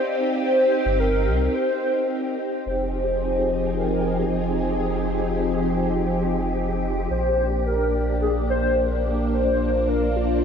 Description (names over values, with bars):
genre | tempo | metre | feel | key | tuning
IDM | 108 BPM | 4/4 | straight | F dorian | A4 = 440 Hz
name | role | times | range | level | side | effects
warbly nostalgic lead | melody | 0.0-10.4 s | F4 to C5 | -24 LUFS | equal | tremolo, analog chorus, digital delay
soft string machine | sustained chords | 0.0-10.4 s | F3 to Ab4 | -24 LUFS | equal | ensemble chorus
warm sub bass | bass | 0.9-10.4 s | F1 to C2 | -26 LUFS | equal | none
room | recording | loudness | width
wet plate reverb, RT60 3.4 s | dark, warm production | -20 LUFS | side -7 dB against mid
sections
0.0-2.7 A section; 2.7-10.4 B section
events
break 1.5-2.7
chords
0.0 Cm; 2.7 Fm7; 7.1 Bb6